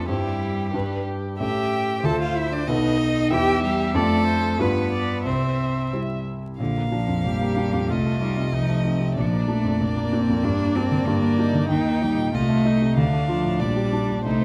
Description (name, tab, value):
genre	quick classical-period movement for piano quartet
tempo	94 BPM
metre	2/4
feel	straight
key	C major, Bb major from 6.6 s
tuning	A4 = 440 Hz
part	rich violin	melody	0.0-14.4 s	G4 to A5	-32 LUFS	equal	none
part	rich cello	second line	0.0-14.4 s	D3 to A4	-27 LUFS	equal	none
part	warm concert grand piano	accompaniment	0.0-14.4 s	Bb1 to C5	-26 LUFS	equal	none
part	warm viola	accompaniment	0.0-14.4 s	Bb3 to E5	-33 LUFS	equal	none
room	moderate concert hall reverb, RT60 2.2 s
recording	close, detailed microphones, vinyl crackle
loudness	-22 LUFS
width	mono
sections	0.0-6.6 A section; 6.6-14.4 B section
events	none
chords	0.1 C/G; 0.7 G; 1.4 A7; 2.0 Dm; 2.7 B7; 3.3 Em; 4.0 Dm/F; 4.6 G7; 5.3 C; 6.6 Bb; 7.9 F7/C; 9.2 Bb; 10.4 Gm; 11.7 Eb; 12.3 Adim/C; 13.0 Dm; 13.6 Gm/Bb